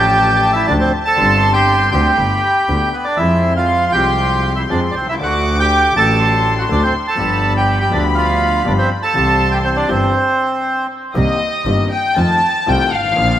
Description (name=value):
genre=tango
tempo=120 BPM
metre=4/4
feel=rubato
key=C major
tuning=A4 = 440 Hz
part: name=bandoneon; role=melody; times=0.0-10.9 s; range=B3 to A5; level=-15 LUFS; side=right 1 dB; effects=analog delay
part: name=warm studio violin section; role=second line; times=0.0-13.4 s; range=Eb5 to D6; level=-20 LUFS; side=left 2 dB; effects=none
part: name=warm concert grand piano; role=accompaniment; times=0.0-13.4 s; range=G1 to A4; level=-22 LUFS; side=left 3 dB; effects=none
part: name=clear double bass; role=bass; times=0.0-13.4 s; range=G1 to F2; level=-18 LUFS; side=right 1 dB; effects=none
room=moderate lush hall reverb, RT60 3.0 s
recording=rough home demo mix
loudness=-13 LUFS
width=side -11 dB against mid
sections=0.0-11.2 A section; 11.2-13.4 B section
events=stop 10.2-11.2; violin section solo 11.2-13.4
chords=0.0 Dm; 1.2 Gsus4; 2.2 Gadd9; 3.2 Fm; 5.2 D; 7.2 G7; 9.2 C; 11.2 Cm7; 12.2 F7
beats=0.18 0.68 | 1.18 1.67 2.17 2.67 | 3.18 3.69 4.19 4.70 | 5.20 5.70 6.20 6.70 | 7.19 7.68 8.17 8.66 | 9.16 9.65 10.15 10.66 | 11.16 11.67 12.17 12.68 | 13.18